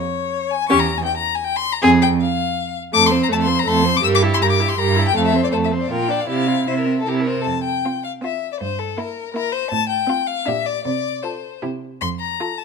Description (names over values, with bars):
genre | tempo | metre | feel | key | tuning
quick classical-period movement for string quartet | 160 BPM | 3/4 | rubato | F major | A4 = 440 Hz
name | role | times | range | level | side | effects
rich violin | melody | 0.0-12.6 s | A4 to E6 | -21 LUFS | left 9 dB | none
rich violin | second line | 0.7-12.6 s | E4 to D5 | -24 LUFS | left 4 dB | none
warm viola | accompaniment | 0.7-12.6 s | A3 to G4 | -22 LUFS | right 3 dB | none
rich cello | bass | 0.7-12.3 s | E2 to C3 | -22 LUFS | right 6 dB | none
room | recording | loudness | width
moderate large studio reverb, RT60 1.2 s | none | -17 LUFS | side -5 dB against mid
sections
0.0-7.5 A section; 7.5-12.6 B section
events
none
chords
0.0 N.C.; 0.7 Edim7; 1.8 F5; 2.9 F; 4.0 Edim/G; 5.2 F; 5.9 Bb; 6.3 C; 7.5 F5; 8.6 Edim/G; 9.7 F/A; 10.5 Gm/Bb; 10.9 F/C; 11.6 C; 12.0 F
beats
0.33 | 0.70 1.08 1.46 | 1.83 2.20 2.57 | 2.94 3.31 3.67 | 4.04 4.41 4.78 | 5.15 5.52 5.90 | 6.29 6.68 7.07 | 7.46 7.85 8.23 | 8.60 8.98 9.35 | 9.72 10.09 10.47 | 10.85 11.24 11.63 | 12.02 12.40